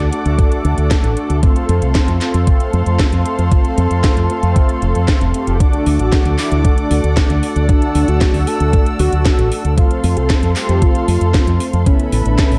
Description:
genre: italo disco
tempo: 115 BPM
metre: 4/4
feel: straight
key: unclear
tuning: A4 = 441 Hz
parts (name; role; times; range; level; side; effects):
- muted studio string section; sustained chords; 0.0-12.6 s; A4 to E6; -27 LUFS; equal; none
- mellow synth brass; stabs; 0.0-12.6 s; A3 to C5; -24 LUFS; equal; chorus, digital delay
- fingered electric bass with an envelope filter; bass; 0.0-12.6 s; F1 to F2; -18 LUFS; equal; none
- house drum kit; drums; 0.0-12.6 s; handclaps, hi-hat, snare drum; -25 LUFS; equal; none
- electronic kick drum; drums; 0.4-12.5 s; none; -16 LUFS; equal; none
- unison lead; melody; 5.6-12.6 s; C#4 to A4; -23 LUFS; equal; vintage 12-bit sampler grit, digital delay
room: light reverb, digital ambience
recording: dark, warm production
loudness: -15 LUFS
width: mono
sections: 0.0-12.6 A section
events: none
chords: 0.0 D; 1.4 F; 5.6 D; 9.8 F; 11.9 Asus2

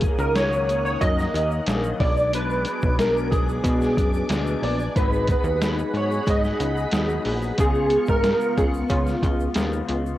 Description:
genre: indie pop, bedroom pop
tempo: 91 BPM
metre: 4/4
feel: straight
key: F# major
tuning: A4 = 441 Hz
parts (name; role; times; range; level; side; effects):
- soft electric-piano-like synth keys; melody; 0.0-9.5 s; E#4 to D#5; -24 LUFS; right 1 dB; ensemble chorus, cassette tape, tape echo
- electric guitar through a small old amp; accompaniment; 0.0-10.2 s; F#2 to E#4; -30 LUFS; left 6 dB; analog chorus, warbly pitch drift, cassette tape
- ensemble organ-string; sustained chords; 0.0-10.2 s; B3 to D#6; -30 LUFS; right 1 dB; ensemble chorus, cassette tape
- plucky analog bass; bass; 0.0-10.2 s; G#1 to C#3; -26 LUFS; equal; none
- lo-fi sampler-style drum kit; drums; 0.0-10.0 s; hi-hat, kick drum, snare drum; -24 LUFS; equal; overdrive, vintage 12-bit sampler grit, cassette tape
- egg shaker; percussion; 0.0-10.2 s; none; -52 LUFS; right 8 dB; none
room: moderate booth ambience, RT60 0.3 s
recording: home recording on cassette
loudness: -20 LUFS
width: side -14 dB against mid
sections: 0.0-10.2 A section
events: none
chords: 0.0 F#6; 2.0 Bm6; 5.0 G#m7; 7.6 C#7

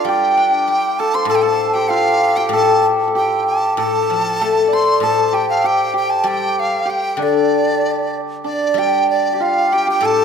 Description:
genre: chinese traditional, Chinese chamber ensemble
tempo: 97 BPM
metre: 2/4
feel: rubato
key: D yu mode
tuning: A4 = 439 Hz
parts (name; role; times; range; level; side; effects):
- breathy large dizi; melody; 0.0-10.2 s; D5 to C6; -19 LUFS; equal; none
- hammered dulcimer; second line; 0.0-10.2 s; D4 to D5; -17 LUFS; right 2 dB; none
- guzheng; accompaniment; 0.0-10.2 s; A2 to G4; -21 LUFS; left 9 dB; none
room: wet scoring stage reverb, RT60 1.9 s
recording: none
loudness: -14 LUFS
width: side -7 dB against mid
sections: 0.0-8.8 A section; 8.8-10.2 B section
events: none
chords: none

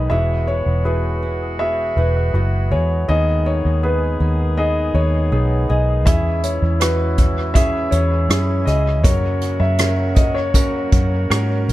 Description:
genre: pop ballad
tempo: 80 BPM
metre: 4/4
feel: straight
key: unclear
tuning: A4 = 441 Hz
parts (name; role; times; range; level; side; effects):
- warm concert grand piano; melody; 0.0-11.6 s; B4 to E5; -23 LUFS; left 1 dB; dub echo
- warm concert grand piano; accompaniment; 0.0-11.7 s; G#2 to B4; -25 LUFS; right 1 dB; dub echo
- mellow woodwind section; sustained chords; 0.0-11.7 s; C#3 to G#4; -31 LUFS; equal; none
- flamenco guitar; arpeggios; 0.0-11.7 s; G#2 to B4; -30 LUFS; equal; dub echo
- vintage muted fingered electric bass; bass; 0.0-11.7 s; E1 to G#2; -18 LUFS; equal; none
- unplugged drum kit; drums; 6.1-11.7 s; hi-hat, kick drum, rim click; -17 LUFS; equal; none
room: small room ambience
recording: echo-heavy mix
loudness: -15 LUFS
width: side -16 dB against mid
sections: 0.1-11.7 A section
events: none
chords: 0.1 Eadd9; 3.1 G#m/D#; 6.1 C#m/E; 9.0 F#

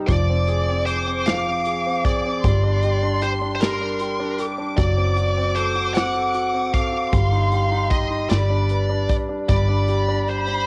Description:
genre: six-eight pop ballad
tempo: 51 BPM (dotted quarters)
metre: 6/8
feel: straight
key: unclear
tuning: A4 = 439 Hz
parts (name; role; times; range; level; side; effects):
- clear concert grand piano; accompaniment; 0.0-10.7 s; F3 to D5; -28 LUFS; equal; plate reverb
- vintage muted fingered electric bass; bass; 0.0-10.7 s; F1 to G1; -24 LUFS; equal; none
- bluesy overdriven lead guitar; melody; 0.1-10.7 s; Bb4 to F#5; -28 LUFS; equal; distortion, cassette tape
- dark studio violin section; second line; 0.1-10.7 s; B5 to D6; -30 LUFS; equal; plate reverb, analog delay
- natural country drum kit; drums; 0.1-10.5 s; hi-hat, kick drum, snare drum; -25 LUFS; equal; cassette tape
room: light reverb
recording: home recording on cassette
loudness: -21 LUFS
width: mono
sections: 0.0-10.7 A section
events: none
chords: 0.1 Fm; 2.4 Gsus4; 4.8 D7/F#; 7.1 Cm/G; 8.3 G

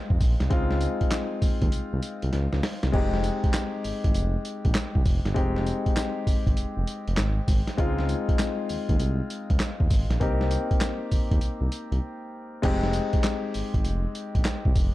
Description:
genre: R&B, new jack swing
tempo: 99 BPM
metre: 4/4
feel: swing 65% on 16ths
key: F minor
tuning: A4 = 440 Hz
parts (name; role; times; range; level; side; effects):
- warm concert grand piano; accompaniment; 0.0-14.9 s; Ab3 to G4; -30 LUFS; left 3 dB; none
- smooth synth bass; bass; 0.1-14.9 s; F1 to F2; -27 LUFS; equal; none
- boom bap sampler-style drum kit; drums; 0.1-14.9 s; crash cymbal, handclaps, hi-hat, kick drum, snare drum, tambourine; -25 LUFS; equal; none
room: little or no reverb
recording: dark, warm production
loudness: -23 LUFS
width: side -16 dB against mid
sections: 0.0-12.6 A section; 12.6-14.9 A section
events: drum fill 2.3-2.9; break 12.0-12.6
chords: 0.0 Dbmaj9; 2.9 Fm9; 7.8 Dbmaj9; 10.2 Cm7; 12.6 Fm9

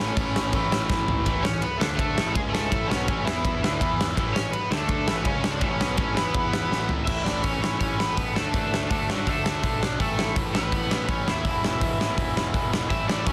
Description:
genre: punk rock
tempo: 165 BPM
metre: 4/4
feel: straight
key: A major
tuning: A4 = 441 Hz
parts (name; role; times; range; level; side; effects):
- overdriven electric guitar; melody; 0.0-13.3 s; E3 to E5; -31 LUFS; equal; none
- distorted electric guitar; riff; 0.0-13.3 s; E2 to E4; -31 LUFS; equal; overdrive
- fuzz picked electric bass; bass; 0.0-13.3 s; E1 to A2; -34 LUFS; equal; overdrive
- big rock drum kit; drums; 0.0-13.3 s; crash cymbal, hi-hat, kick drum, ride cymbal, snare drum, toms; -28 LUFS; equal; none
room: little or no reverb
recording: dense, heavily limited modern master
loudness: -25 LUFS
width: mono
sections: 0.0-1.3 A section; 1.3-7.1 B section; 7.1-13.3 C section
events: drum fill 0.9-1.3, 6.7-7.1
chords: 0.0 A; 1.8 D5; 2.2 A5; 2.4 C#5; 2.7 A; 3.3 E5; 3.6 A5; 3.8 E5; 4.2 A; 4.7 D5; 5.1 A5; 5.3 C#5; 5.6 A; 6.4 E5; 6.7 A5; 8.4 D; 10.0 A; 11.5 E5

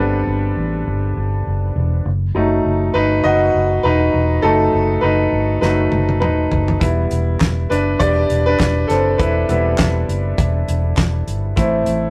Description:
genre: piano-driven pop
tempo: 101 BPM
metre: 4/4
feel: swing 56% on 16ths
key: unclear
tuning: A4 = 441 Hz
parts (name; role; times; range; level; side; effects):
- bright upright piano; accompaniment; 0.0-12.1 s; F#3 to D#5; -20 LUFS; equal; none
- vintage muted fingered electric bass; bass; 0.0-12.1 s; E1 to A1; -21 LUFS; equal; none
- damped 70s drum kit; drums; 5.6-12.0 s; handclaps, hi-hat, kick drum, snare drum, toms; -22 LUFS; equal; none
room: moderate studio reverb, RT60 0.6 s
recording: rough rehearsal-room recording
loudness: -17 LUFS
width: mono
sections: 0.0-12.1 A section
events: upright piano solo 0.0-12.1; drum fill 5.6-6.8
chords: 0.0 G; 2.1 B7; 6.8 Em; 11.6 Am

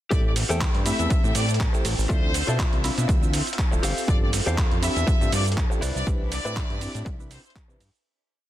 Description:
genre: filtered disco house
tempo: 121 BPM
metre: 4/4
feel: swing 55% on 16ths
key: A minor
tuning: A4 = 439 Hz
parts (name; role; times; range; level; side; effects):
- brilliant trumpet section; melody; 0.1-7.5 s; C5 to E5; -32 LUFS; left 1 dB; sidechain pumping
- reed electric piano; accompaniment; 0.1-7.8 s; A3 to B5; -32 LUFS; equal; fast tremolo, phaser, sidechain pumping
- phased string machine; sustained chords; 0.1-8.0 s; C4 to B5; -34 LUFS; equal; ensemble chorus, phaser, sidechain pumping
- direct-recorded clean electric guitar; riff; 0.1-7.8 s; E4 to G5; -33 LUFS; left 3 dB; sidechain pumping
- fat analog bass; bass; 0.1-7.9 s; D1 to C3; -27 LUFS; equal; sidechain pumping
- dusty soul sampler-style drum kit; drums; 0.1-8.0 s; cabasa, handclaps, hi-hat, ride cymbal; -30 LUFS; right 2 dB; sidechain pumping on hats, sidechain pumping on perc, sidechain pumping on cymbals, soft clipping on snare
- electronic kick drum; drums; 0.1-7.7 s; none; -23 LUFS; equal; overdrive
room: little or no reverb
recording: dense, heavily limited modern master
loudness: -21 LUFS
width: side -13 dB against mid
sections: 0.1-8.0 drop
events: drop 0.1-8.0; fade-out 5.4-8.0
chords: 0.1 Am7; 2.1 Dm9; 3.8 G9sus4; 5.8 Cmaj9

